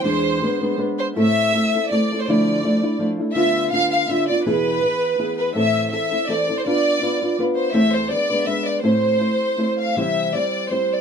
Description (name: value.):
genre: mexican folk, mariachi.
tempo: 164 BPM.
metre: 3/4.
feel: swing 55% on 8ths.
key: A harmonic minor.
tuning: A4 = 440 Hz.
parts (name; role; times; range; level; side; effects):
rich studio violin section; melody; 0.0-11.0 s; B4 to F5; -21 LUFS; left 1 dB; none.
nylon-string guitar; accompaniment; 0.0-11.0 s; E2 to C5; -20 LUFS; equal; none.
room: light reverb.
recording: none.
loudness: -17 LUFS.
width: side -7 dB against mid.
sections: 0.0-1.2 A section; 1.2-10.0 B section; 10.0-11.0 A section.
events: none.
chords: 0.1 E7; 1.2 Am; 2.3 Dmadd9; 3.4 Bdim/D; 4.5 E; 5.6 Am; 6.7 Bdim; 7.7 Am/E; 8.1 G#dim; 8.8 Am; 10.0 C.